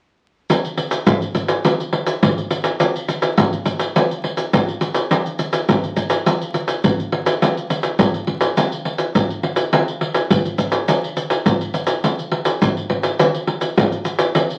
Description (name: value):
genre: samba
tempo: 104 BPM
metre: 4/4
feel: straight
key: none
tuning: none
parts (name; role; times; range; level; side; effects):
- tube shaker, surdo and pandeiro; percussion; 0.5-14.6 s; none; -20 LUFS; equal; none
room: wet studio reverb, RT60 0.6 s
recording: very old 78 rpm record, vinyl crackle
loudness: -19 LUFS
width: mono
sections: 0.5-14.6 A section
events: none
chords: none